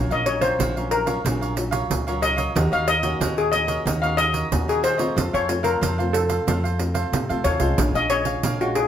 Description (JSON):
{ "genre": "samba and choro", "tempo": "92 BPM", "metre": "4/4", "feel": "straight", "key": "unclear", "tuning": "A4 = 444 Hz", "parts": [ { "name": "steel pan", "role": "melody", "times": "0.0-8.9 s", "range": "Gb4 to F5", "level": "-23 LUFS", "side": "left 3 dB", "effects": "none" }, { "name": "cavaquinho", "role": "accompaniment", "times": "0.0-8.9 s", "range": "F4 to Ab5", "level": "-30 LUFS", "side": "right 5 dB", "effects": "none" }, { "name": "nylon-string guitar", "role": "accompaniment", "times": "0.0-8.9 s", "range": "F2 to Gb4", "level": "-29 LUFS", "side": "left 3 dB", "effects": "none" }, { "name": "upright bass", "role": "bass", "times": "0.0-8.9 s", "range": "Bb1 to A2", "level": "-26 LUFS", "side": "equal", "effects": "none" }, { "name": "pandeiro", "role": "percussion", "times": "0.1-8.9 s", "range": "none", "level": "-27 LUFS", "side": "right 4 dB", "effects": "none" } ], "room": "moderate studio reverb, RT60 0.8 s", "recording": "band playing live in one room", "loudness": "-19 LUFS", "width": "side -10 dB against mid", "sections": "0.0-8.9 A section", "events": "none", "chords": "0.0 Gbmaj7/Bb; 2.6 Ebm7; 5.2 F; 7.8 Bbm7", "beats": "0.60 1.25 1.91 | 2.56 3.21 3.87 4.52 | 5.17 5.82 6.48 7.13 | 7.78 8.44" }